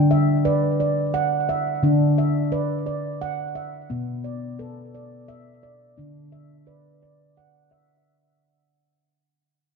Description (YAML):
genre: world meditative, meditative tuned percussion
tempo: 58 BPM (dotted quarters)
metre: 6/8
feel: straight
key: D major pentatonic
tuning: A4 = 440 Hz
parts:
  - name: handpan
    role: solo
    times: 0.0-8.4 s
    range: B2 to G5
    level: -21 LUFS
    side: right 1 dB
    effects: tape echo
room: wet scoring stage reverb, RT60 1.6 s, studio ambience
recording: dark, warm production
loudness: -20 LUFS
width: side -5 dB against mid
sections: 0.0-8.1 A section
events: fade-out 0.0-8.1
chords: 0.0 D; 3.9 Bm; 6.0 D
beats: 0.79 | 1.82 2.86 | 3.90 4.94 | 5.98 7.02